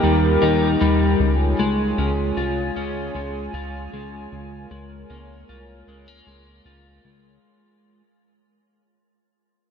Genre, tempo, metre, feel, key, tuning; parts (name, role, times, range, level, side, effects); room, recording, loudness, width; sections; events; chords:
dream pop; 77 BPM; 4/4; straight; Db lydian; A4 = 444 Hz
hollow soft pad; sustained chords; 0.0-7.4 s; Eb4 to Ab5; -24 LUFS; right 1 dB; chorus
electric guitar at the edge of break-up; arpeggios; 0.0-8.0 s; Eb3 to F4; -23 LUFS; left 3 dB; wide subtle chorus, analog delay
chorused synth bass; bass; 0.0-7.4 s; C2 to Eb2; -24 LUFS; equal
moderate huge ambient reverb, RT60 8.8 s; dreamy mix soaked in reverb; -18 LUFS; side -7 dB against mid
0.0-7.4 A section
fade-out 0.0-7.4
0.0 Eb; 1.2 Db; 4.3 Db6